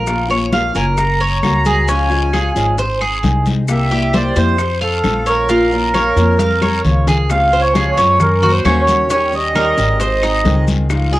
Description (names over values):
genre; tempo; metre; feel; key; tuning
latin, Cuban son and guajira; 133 BPM; 4/4; straight; Bb minor; A4 = 440 Hz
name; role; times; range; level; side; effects
fingerpicked acoustic archtop guitar; accompaniment; 0.0-11.2 s; C3 to Ab4; -22 LUFS; left 3 dB; cassette tape
Cuban tres; arpeggios; 0.0-11.2 s; Db4 to F5; -18 LUFS; right 1 dB; cassette tape, plate reverb
upright bass; bass; 0.0-11.2 s; Gb1 to Gb2; -17 LUFS; equal; none
bongos; percussion; 0.1-11.2 s; none; -29 LUFS; left 6 dB; none
claves; percussion; 0.1-11.1 s; none; -30 LUFS; left 3 dB; none
congas; percussion; 0.1-11.2 s; none; -21 LUFS; left 1 dB; none
guiro; percussion; 0.1-11.2 s; none; -29 LUFS; left 6 dB; none
maracas; percussion; 0.1-11.2 s; none; -34 LUFS; left 6 dB; none
accordion; melody; 0.5-10.7 s; A4 to Bb5; -17 LUFS; right 2 dB; cassette tape, plate reverb
room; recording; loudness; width
moderate booth ambience, RT60 0.2 s; home recording on cassette; -12 LUFS; side -16 dB against mid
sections
0.0-7.3 A section; 7.3-11.2 B section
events
drum fill 6.4-7.3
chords
0.1 Bbm; 1.0 Gb; 1.9 Db; 2.8 Ab; 3.7 C7; 4.6 F; 5.5 Bbm; 7.3 Dbmaj7; 8.2 Gb; 9.1 Eb7; 10.0 Ab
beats
| 0.07 0.53 0.98 1.43 | 1.88 2.33 2.79 3.24 | 3.69 4.14 4.59 5.04 | 5.49 5.95 6.40 6.85 | 7.30 7.75 8.20 8.65 | 9.10 9.55 10.00 10.46 | 10.91